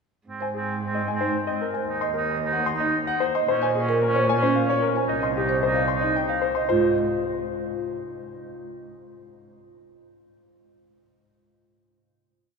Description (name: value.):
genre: classical, minimalist pattern music.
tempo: 112 BPM.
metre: 3/4.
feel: straight.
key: Ab major.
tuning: A4 = 440 Hz.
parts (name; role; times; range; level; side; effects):
warm oboe; second line; 0.3-6.5 s; C4 to Eb4; -28 LUFS; right 2 dB; none.
rich cello; bass; 0.3-6.9 s; C2 to Bb2; -30 LUFS; right 2 dB; none.
clear grand piano; melody; 0.4-6.9 s; G4 to C6; -26 LUFS; left 6 dB; none.
marimba with soft mallets; arpeggios; 0.4-6.9 s; Db4 to Eb5; -27 LUFS; right 4 dB; none.
room: wet cathedral reverb, RT60 5.4 s.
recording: recorded in a church or concert hall.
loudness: -21 LUFS.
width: side -5 dB against mid.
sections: 0.3-6.7 A section; 6.7-8.3 final chord.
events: none.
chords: 0.3 Ab; 1.9 Ebm; 3.5 Bbm7; 5.1 Cm; 6.7 N.C..